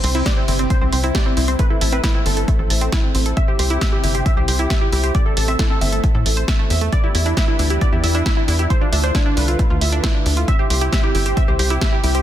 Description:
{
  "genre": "uplifting trance",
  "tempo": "135 BPM",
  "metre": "4/4",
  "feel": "straight",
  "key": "C major",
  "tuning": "A4 = 439 Hz",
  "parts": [
    { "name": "supersaw stab", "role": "melody", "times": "0.0-12.2 s", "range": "C4 to E5", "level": "-23 LUFS", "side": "right 1 dB", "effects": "sidechain pumping, low-pass filter, tape echo" },
    { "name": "lush unison pad", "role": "sustained chords", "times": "0.0-12.2 s", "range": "C3 to G4", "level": "-28 LUFS", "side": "left 1 dB", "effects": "chorus, sidechain pumping" },
    { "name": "analog pluck", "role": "arpeggios", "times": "0.0-12.2 s", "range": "A3 to C6", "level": "-26 LUFS", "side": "right 3 dB", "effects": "chorus, sidechain pumping, ping-pong delay" },
    { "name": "tight sequencer bass", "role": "bass", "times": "0.0-12.2 s", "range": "G1 to A2", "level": "-19 LUFS", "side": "equal", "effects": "sidechain pumping" },
    { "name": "punchy analog drum machine", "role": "drums", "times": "0.0-12.2 s", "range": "hi-hat, snare drum", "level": "-25 LUFS", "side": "equal", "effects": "none" },
    { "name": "electronic kick drum", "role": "drums", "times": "0.3-11.9 s", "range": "none", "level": "-18 LUFS", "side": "equal", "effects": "none" }
  ],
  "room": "light reverb",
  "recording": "dense, heavily limited modern master",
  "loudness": "-15 LUFS",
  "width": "side -12 dB against mid",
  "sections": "0.0-12.2 A section",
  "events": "none",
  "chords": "0.0 C; 1.6 Am; 3.4 C; 5.1 Am; 6.9 Em7; 8.7 Dmadd9; 10.5 C",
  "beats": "0.26 0.70 1.15 | 1.59 2.04 2.48 2.92 | 3.37 3.81 4.26 4.70 | 5.15 5.59 6.04 6.48 | 6.92 7.37 7.81 8.26 | 8.70 9.15 9.59 10.04 | 10.48 10.93 11.37 11.81"
}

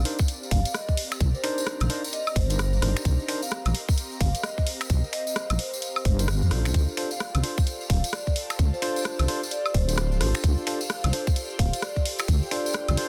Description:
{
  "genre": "UK garage, two-step garage",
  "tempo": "130 BPM",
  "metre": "4/4",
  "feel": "swing 62% on 16ths",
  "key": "C dorian",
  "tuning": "A4 = 440 Hz",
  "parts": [
    { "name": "airy breathy pad", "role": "sustained chords", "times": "0.0-13.1 s", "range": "C4 to Eb5", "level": "-44 LUFS", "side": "equal", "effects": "none" },
    { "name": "deep soft wobble bass", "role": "bass", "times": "0.0-13.0 s", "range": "D1 to F2", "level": "-26 LUFS", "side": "equal", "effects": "chorus" },
    { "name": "ethereal airy pad", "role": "texture", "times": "0.4-13.1 s", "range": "G4 to Bb5", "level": "-43 LUFS", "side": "equal", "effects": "ensemble chorus, built-in reverb, phaser, sidechain pumping" },
    { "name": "tine electric piano", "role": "stabs", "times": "0.1-3.4, 6.2-13.1 s", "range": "D4 to C5", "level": "-35 LUFS", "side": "equal", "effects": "dub echo" },
    { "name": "garage drum kit", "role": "drums", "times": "0.1-13.1 s", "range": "finger snaps, hi-hat, rim click, woodblock", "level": "-33 LUFS", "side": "equal", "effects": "soft clipping on snare" },
    { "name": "electronic kick drum", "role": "drums", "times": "0.2-12.4 s", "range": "none", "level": "-26 LUFS", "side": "equal", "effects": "none" },
    { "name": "tambourine", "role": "percussion", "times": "0.2-13.0 s", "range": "none", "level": "-39 LUFS", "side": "equal", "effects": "none" },
    { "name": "vibraphone with soft mallets", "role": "melody", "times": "0.5-13.1 s", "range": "C5 to F5", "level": "-36 LUFS", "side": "equal", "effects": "dub echo" }
  ],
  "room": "little or no reverb",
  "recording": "dense, heavily limited modern master",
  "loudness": "-26 LUFS",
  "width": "mono",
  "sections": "0.0-13.1 A section",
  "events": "none",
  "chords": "0.0 Cm9; 6.7 Dm7",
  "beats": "0.28 0.74 | 1.21 1.67 2.13 2.59 | 3.05 3.51 3.97 4.44 | 4.90 5.36 5.82 6.28 | 6.74 7.21 7.67 8.13 | 8.59 9.05 9.51 9.97 | 10.44 10.90 11.36 11.82 | 12.28 12.74"
}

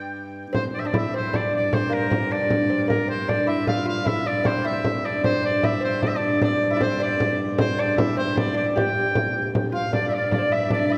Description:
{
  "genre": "medieval dance",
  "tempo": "102 BPM (dotted quarters)",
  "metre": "6/8",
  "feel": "straight",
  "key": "G dorian",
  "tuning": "A4 = 443 Hz",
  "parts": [
    { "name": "bright shawm", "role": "melody", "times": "0.0-11.0 s", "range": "Bb4 to G5", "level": "-28 LUFS", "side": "equal", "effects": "none" },
    { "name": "warm viola da gamba", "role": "drone", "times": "0.0-11.0 s", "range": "G2", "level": "-31 LUFS", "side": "equal", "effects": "none" },
    { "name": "lute", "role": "second line", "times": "0.5-11.0 s", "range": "Bb3 to G4", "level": "-28 LUFS", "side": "equal", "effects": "none" },
    { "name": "frame drum", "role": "percussion", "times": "0.5-11.0 s", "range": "none", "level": "-28 LUFS", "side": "equal", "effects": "none" },
    { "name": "bright alto recorder", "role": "second line", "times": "9.7-11.0 s", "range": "C5 to F5", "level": "-31 LUFS", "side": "equal", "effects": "none" }
  ],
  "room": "wet church reverb, RT60 2.9 s",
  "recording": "none",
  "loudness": "-23 LUFS",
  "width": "mono",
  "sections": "0.5-9.9 A section; 9.9-11.0 B section",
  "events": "none",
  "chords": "none",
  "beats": "| 0.55 1.13 | 1.72 2.31 | 2.89 3.48 | 4.07 4.66 | 5.24 5.83 | 6.42 7.00 | 7.59 8.18 | 8.76 9.35 | 9.93 10.52"
}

